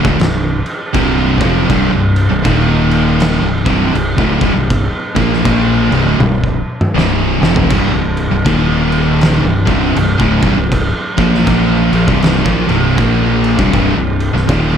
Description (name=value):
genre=stoner and doom metal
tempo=80 BPM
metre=4/4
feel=swing 61% on 8ths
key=C minor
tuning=A4 = 436 Hz
part: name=scooped high-gain guitar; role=riff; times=0.0-14.8 s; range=C2 to Bb3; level=-18 LUFS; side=equal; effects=distortion
part: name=thick fuzz guitar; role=riff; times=0.0-14.8 s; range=C2 to Bb3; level=-17 LUFS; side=left 9 dB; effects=distortion
part: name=thick fuzz guitar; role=riff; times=0.0-14.8 s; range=C2 to Bb3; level=-17 LUFS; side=right 8 dB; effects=distortion
part: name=overdriven fingered electric bass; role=bass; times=0.0-14.8 s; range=C1 to Bb1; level=-19 LUFS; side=equal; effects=none
part: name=oversized low-tuned drum kit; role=drums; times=0.0-14.7 s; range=crash cymbal, kick drum, snare drum, toms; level=-16 LUFS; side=equal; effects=none
room=light reverb, studio reverb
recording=none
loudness=-11 LUFS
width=side -8 dB against mid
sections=0.0-14.8 A section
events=drum fill 6.2-7.7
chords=0.0 C5; 2.4 Eb5; 3.4 C5; 8.5 Eb5; 9.4 C5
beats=0.19 0.94 | 1.69 2.44 3.19 3.95 | 4.70 5.45 6.20 6.96 | 7.71 8.46 9.21 9.96 | 10.72 11.47 12.22 12.97 | 13.73 14.48